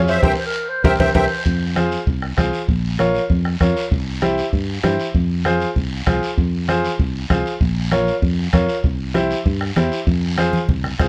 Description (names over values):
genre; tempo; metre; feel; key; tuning
latin, cumbia; 195 BPM; 4/4; straight; F harmonic minor; A4 = 441 Hz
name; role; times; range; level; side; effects
clear upright piano; accompaniment; 0.0-11.1 s; E4 to Db5; -23 LUFS; equal; none
fingered electric bass; bass; 0.0-11.1 s; Bb1 to G2; -23 LUFS; equal; none
musette accordion; melody; 0.1-1.3 s; C5 to G5; -23 LUFS; equal; plate reverb
guiro; percussion; 0.1-11.1 s; none; -34 LUFS; equal; none
bombo; percussion; 0.2-11.1 s; none; -23 LUFS; equal; none
congas; percussion; 0.2-11.1 s; none; -27 LUFS; equal; none
timbales; percussion; 0.2-1.2 s; none; -29 LUFS; equal; none
breathy clarinet; second line; 0.4-1.4 s; Bb4 to C5; -27 LUFS; equal; analog delay
room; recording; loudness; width
light reverb; none; -19 LUFS; mono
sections
0.0-1.5 A section; 1.5-11.1 B section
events
drum fill 0.2-1.5, 10.4-11.1; band accent 0.2-1.5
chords
0.2 C7; 1.5 Fm; 2.7 Bbm; 3.9 C; 5.2 Fm; 7.6 Bbm; 8.8 C; 10.1 Fm